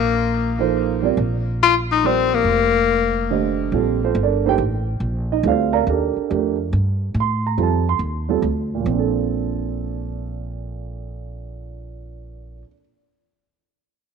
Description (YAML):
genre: jazz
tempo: 141 BPM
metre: 3/4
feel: swing 64% on 8ths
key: Bb major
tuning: A4 = 436 Hz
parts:
  - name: clear tenor saxophone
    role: melody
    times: 0.0-3.6 s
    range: Bb3 to F4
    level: -18 LUFS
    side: left 8 dB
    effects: tape echo
  - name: upright bass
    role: bass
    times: 0.0-12.6 s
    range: F1 to A2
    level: -24 LUFS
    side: equal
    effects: none
  - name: dark concert grand piano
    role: accompaniment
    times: 0.6-12.8 s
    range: Bb2 to C6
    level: -21 LUFS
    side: right 12 dB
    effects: none
room: light reverb, small room ambience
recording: 1960s-style stereo with parts hard left and right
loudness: -18 LUFS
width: side -6 dB against mid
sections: 0.0-3.7 A section; 3.7-8.9 B section; 8.9-11.4 C section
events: none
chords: 0.0 Bbmaj9